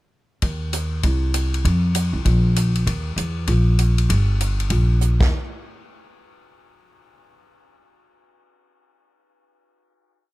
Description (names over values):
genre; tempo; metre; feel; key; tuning
jazz, big band swing; 196 BPM; 4/4; swing 63% on 8ths; Eb major; A4 = 442 Hz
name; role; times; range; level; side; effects
upright bass; bass; 0.4-5.3 s; G1 to F2; -18 LUFS; equal; none
swinging big-band drum kit; drums; 0.4-5.3 s; crash cymbal, hi-hat, kick drum, ride cymbal, snare drum; -25 LUFS; equal; none
room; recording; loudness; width
little or no reverb; dry, close 1970s-style studio recording; -17 LUFS; side -19 dB against mid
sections
0.4-5.3 A section; 5.3-6.5 final hit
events
drum fill 5.0-5.3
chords
none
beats
| 0.42 0.72 1.03 1.33 | 1.64 1.95 2.25 2.56 | 2.87 3.17 3.48 3.79 | 4.09 4.40 4.71 5.01